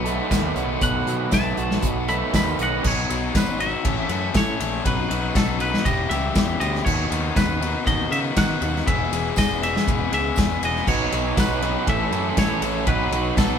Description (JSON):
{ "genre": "indie rock", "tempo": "120 BPM", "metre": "4/4", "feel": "straight", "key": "unclear", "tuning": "A4 = 440 Hz", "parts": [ { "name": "crunchy overdriven guitar", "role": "riff", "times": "0.0-2.8, 10.9-13.6 s", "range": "E3 to A4", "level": "-26 LUFS", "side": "right 9 dB", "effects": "none" }, { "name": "overdriven electric guitar", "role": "riff", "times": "0.0-13.6 s", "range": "E2 to A4", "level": "-26 LUFS", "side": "left 5 dB", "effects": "none" }, { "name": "modern bright picked electric bass", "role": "bass", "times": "0.0-13.6 s", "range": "E1 to D#3", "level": "-28 LUFS", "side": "equal", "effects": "none" }, { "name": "loose indie drum kit", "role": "drums", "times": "0.1-13.5 s", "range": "crash cymbal, hi-hat, kick drum, ride cymbal, snare drum", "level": "-23 LUFS", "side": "equal", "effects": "none" }, { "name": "tambourine", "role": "percussion", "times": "0.3-13.5 s", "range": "none", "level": "-40 LUFS", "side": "right 8 dB", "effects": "none" }, { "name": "twangy electric guitar", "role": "melody", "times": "0.8-13.6 s", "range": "A4 to B5", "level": "-27 LUFS", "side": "equal", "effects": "none" } ], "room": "moderate stone room reverb, RT60 1.2 s", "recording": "band playing live in one room", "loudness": "-19 LUFS", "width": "side -7 dB against mid", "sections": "0.0-2.8 A section; 2.8-13.6 B section", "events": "clean electric guitar solo 0.0-2.8", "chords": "0.0 B7; 2.8 B; 3.9 A; 4.9 B; 5.9 Em; 6.9 B/D#; 8.9 E; 10.9 B; 11.9 A; 12.9 B", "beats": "0.32 | 0.82 1.33 1.83 2.34 | 2.84 3.35 3.85 4.36 | 4.86 5.36 5.86 6.37 | 6.87 7.37 7.87 8.37 | 8.87 9.37 9.87 10.37 | 10.88 11.38 11.88 12.38 | 12.88 13.38" }